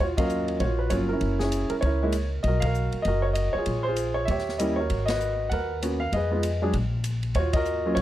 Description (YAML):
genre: jazz piano trio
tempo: 196 BPM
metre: 4/4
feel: swing 60% on 8ths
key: Eb minor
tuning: A4 = 438 Hz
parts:
  - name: warm concert grand piano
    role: melody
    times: 0.0-8.0 s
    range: Gb3 to Gb5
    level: -26 LUFS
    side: right 1 dB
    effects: plate reverb
  - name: upright bass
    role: bass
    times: 0.0-8.0 s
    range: Gb1 to F2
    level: -27 LUFS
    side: equal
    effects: none
  - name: swinging big-band drum kit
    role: drums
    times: 0.2-8.0 s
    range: hi-hat, kick drum, ride cymbal, snare drum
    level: -34 LUFS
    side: left 1 dB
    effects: none
room: light reverb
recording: dark, warm production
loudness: -23 LUFS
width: side -13 dB against mid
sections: 0.0-8.0 A section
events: band accent 0.1, 2.6, 5.1, 7.5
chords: 0.0 Ebm9; 1.2 Gb9; 2.4 B5; 3.7 Bb5; 4.3 Eb7b9; 4.9 Abm11; 6.1 Fm7b5; 6.7 N.C.; 7.4 Ebm9